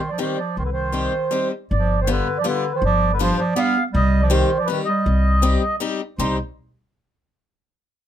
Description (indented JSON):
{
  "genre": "musette waltz",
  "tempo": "160 BPM",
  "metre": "3/4",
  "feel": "rubato",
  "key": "C harmonic minor",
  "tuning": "A4 = 441 Hz",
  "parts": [
    { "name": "mellow accordion", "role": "melody", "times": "0.0-6.4 s", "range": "B4 to F5", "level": "-22 LUFS", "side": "right 2 dB", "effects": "none" },
    { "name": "bright clarinet", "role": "second line", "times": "0.0-6.4 s", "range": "D3 to Eb4", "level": "-24 LUFS", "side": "right 3 dB", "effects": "none" },
    { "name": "picked swing-style acoustic guitar", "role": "accompaniment", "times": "0.2-6.4 s", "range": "G3 to G4", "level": "-24 LUFS", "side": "left 6 dB", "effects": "none" },
    { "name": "upright bass", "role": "bass", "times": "0.6-6.4 s", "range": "G1 to C2", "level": "-20 LUFS", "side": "left 1 dB", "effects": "none" }
  ],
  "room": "light reverb",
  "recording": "close, detailed microphones",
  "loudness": "-18 LUFS",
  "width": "side -10 dB against mid",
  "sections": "0.0-1.7 A section; 1.7-6.2 B section; 6.2-7.3 C section",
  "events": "none",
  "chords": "0.0 Cm; 1.7 G7; 3.9 Cm"
}